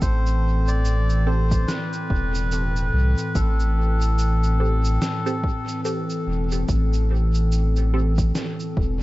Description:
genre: ambient dub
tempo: 72 BPM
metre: 4/4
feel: swing 59% on 16ths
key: A minor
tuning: A4 = 437 Hz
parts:
  - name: melodica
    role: melody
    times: 0.0-5.8 s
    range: A4 to D5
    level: -30 LUFS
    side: left 1 dB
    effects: dub echo
  - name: warbly tape-like pad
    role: sustained chords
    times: 0.0-9.0 s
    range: A2 to A5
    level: -28 LUFS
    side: equal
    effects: chorus, built-in reverb
  - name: warm sub bass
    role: bass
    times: 0.0-9.0 s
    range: E1 to C2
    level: -20 LUFS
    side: equal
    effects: none
  - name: electronic cabasa and snare drum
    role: drums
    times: 0.0-8.7 s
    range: none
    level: -31 LUFS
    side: right 1 dB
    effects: dub echo
  - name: electronic kick drum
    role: drums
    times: 0.0-9.0 s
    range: none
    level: -23 LUFS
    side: equal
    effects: none
  - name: filtered dub chord stab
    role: stabs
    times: 1.3-8.1 s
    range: C4 to A4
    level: -32 LUFS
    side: right 2 dB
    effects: phaser, cassette tape, dub echo
room: little or no reverb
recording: echo-heavy mix, vinyl crackle, nothing above 7.7 kHz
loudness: -19 LUFS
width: side -18 dB against mid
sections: 0.0-9.0 A section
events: none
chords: 0.0 Am7

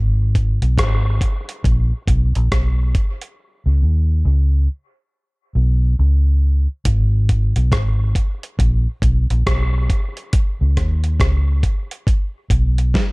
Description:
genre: dub reggae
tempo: 69 BPM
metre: 4/4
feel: swing 63% on 16ths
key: G# minor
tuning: A4 = 440 Hz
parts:
  - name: vintage muted fingered electric bass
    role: bass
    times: 0.0-12.9 s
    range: G#1 to D#2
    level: -15 LUFS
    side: equal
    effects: none
  - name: dusty soul sampler-style drum kit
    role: drums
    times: 0.4-13.1 s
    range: hi-hat, kick drum, rim click, snare drum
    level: -18 LUFS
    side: equal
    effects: none
room: little or no reverb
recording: dark, warm production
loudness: -15 LUFS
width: side -28 dB against mid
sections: 0.0-13.1 A section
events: part muted 3.4-6.9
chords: none

